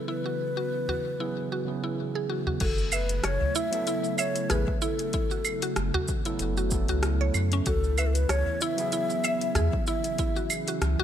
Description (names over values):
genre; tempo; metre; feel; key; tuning
organic downtempo; 95 BPM; 4/4; swing 55% on 16ths; F# minor; A4 = 440 Hz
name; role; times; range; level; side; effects
breathy mellow low ney; melody; 0.0-10.5 s; A4 to E5; -32 LUFS; left 2 dB; ping-pong delay
overdriven tine electric piano; accompaniment; 0.0-11.0 s; C#3 to B4; -35 LUFS; right 5 dB; sidechain pumping, ping-pong delay
warbly tape-like pad; sustained chords; 0.0-11.0 s; C#3 to E4; -35 LUFS; right 2 dB; chorus, built-in reverb, sidechain pumping
mallet-like synth pluck; arpeggios; 0.1-11.0 s; C#4 to E5; -33 LUFS; equal; chorus, ping-pong delay
deep house drum kit; drums; 0.1-11.0 s; cabasa, claves, crash cymbal, hi-hat, rim click; -32 LUFS; right 1 dB; overdrive, low-pass filter on perc, low-pass filter on hats, low-pass filter on cymbals, low-pass filter on snare
udu; percussion; 0.9-11.0 s; none; -32 LUFS; equal; none
warm sub bass; bass; 2.6-11.0 s; F#1 to F#2; -26 LUFS; equal; sidechain pumping
electronic kick drum; drums; 2.6-10.3 s; none; -30 LUFS; equal; overdrive
room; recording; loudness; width
light reverb; none; -25 LUFS; side -10 dB against mid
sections
0.0-2.6 A section; 2.6-11.0 B section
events
filter sweep on tine electric piano 0.0-2.6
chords
0.0 C#m7; 2.6 F#m7; 7.7 C#m7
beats
| 0.08 0.71 1.34 1.98 | 2.61 3.24 3.87 4.50 | 5.13 5.76 6.40 7.03 | 7.66 8.29 8.92 9.55 | 10.19 10.82